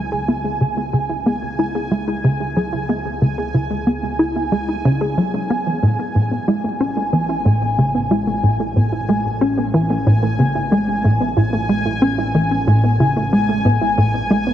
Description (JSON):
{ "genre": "ambient, sequencer-driven space music", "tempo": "92 BPM", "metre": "4/4", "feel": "straight", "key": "A major", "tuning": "A4 = 441 Hz", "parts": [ { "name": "soft round pluck", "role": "arpeggios", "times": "0.0-14.5 s", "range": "E3 to G#4", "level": "-24 LUFS", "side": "right 1 dB", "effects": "chorus, auto-pan, tape echo" }, { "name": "tight sequencer bass", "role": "riff", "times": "0.0-14.4 s", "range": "A2 to E4", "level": "-17 LUFS", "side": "equal", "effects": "analog chorus, cassette tape, tape echo" }, { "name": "analog drone", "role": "bass", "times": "0.0-14.5 s", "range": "A1 to C#2", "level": "-30 LUFS", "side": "equal", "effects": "chorus" }, { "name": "bubbling stepped-filter texture", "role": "texture", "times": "0.0-14.5 s", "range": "G#5", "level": "-24 LUFS", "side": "equal", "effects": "chorus, built-in reverb" } ], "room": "wet huge ambient reverb, RT60 8.8 s", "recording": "worn, warbling old tape, cassette tape, warbly pitch drift", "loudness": "-16 LUFS", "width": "side -11 dB against mid", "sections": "0.0-14.5 A section", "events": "fade-in on synth texture 0.0-14.5; filter sweep on analog synth bass 0.0-14.5", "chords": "0.0 C#m7; 5.8 Amaj7" }